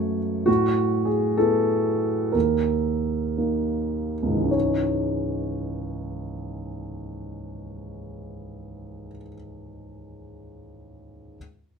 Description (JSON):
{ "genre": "neoclassical minimalist piano", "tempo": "49-68 BPM (dotted quarters)", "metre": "6/8", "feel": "rubato", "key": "C# minor", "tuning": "A4 = 440 Hz", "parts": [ { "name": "dark baby grand piano", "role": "solo", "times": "0.0-11.4 s", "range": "C#2 to C#5", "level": "-23 LUFS", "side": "right 1 dB", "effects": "none" } ], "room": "light reverb", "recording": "minimal, uncompressed stereo recording", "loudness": "-22 LUFS", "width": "side -6 dB against mid", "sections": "0.0-4.5 A section; 4.5-9.1 B section", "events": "slowing down 0.0-4.5", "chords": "0.5 Asus2; 2.3 D#5; 4.5 C#madd9" }